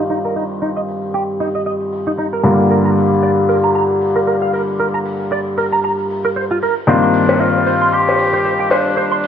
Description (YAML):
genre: nu-disco, nu disco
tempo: 115 BPM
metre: 4/4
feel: swing 56% on 16ths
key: unclear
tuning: A4 = 440 Hz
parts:
  - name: bright concert grand piano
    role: accompaniment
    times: 0.0-9.3 s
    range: G2 to F4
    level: -16 LUFS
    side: left 1 dB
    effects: low-pass filter, ping-pong delay
  - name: direct-recorded clean electric guitar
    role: riff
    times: 0.1-9.1 s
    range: Eb4 to C6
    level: -20 LUFS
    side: right 3 dB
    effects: ensemble chorus, low-pass filter
  - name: hi-hat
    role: drums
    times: 0.4-9.3 s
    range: none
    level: -39 LUFS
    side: right 4 dB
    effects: studio reverb
  - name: raspy tenor saxophone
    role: melody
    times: 6.9-9.3 s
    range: D4 to G4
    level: -17 LUFS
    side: left 1 dB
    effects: ping-pong delay
  - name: cowbell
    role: percussion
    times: 7.3-8.8 s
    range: none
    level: -20 LUFS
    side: left 2 dB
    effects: none
room: wet plate reverb, RT60 2.3 s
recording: bright 1980s-style digital production, low-pass filter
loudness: -13 LUFS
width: side -8 dB against mid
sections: 0.0-9.3 A section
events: filter sweep on grand piano 0.0-9.3; filter sweep 0.0-9.3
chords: 0.0 Eb69/G; 2.4 Bb6/G; 6.9 Cm11/G